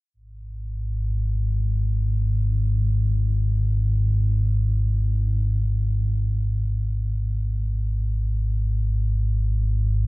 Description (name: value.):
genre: ambient.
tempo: free time.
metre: none.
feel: none.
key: unclear.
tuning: A4 = 441 Hz.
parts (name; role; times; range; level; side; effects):
deep rumbling drone; solo; 0.5-10.1 s; G#1 to G#2; -21 LUFS; equal; built-in reverb, ensemble chorus.
room: light reverb.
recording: none.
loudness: -21 LUFS.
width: side -21 dB against mid.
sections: 0.2-10.1 A section.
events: none.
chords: none.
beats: free time.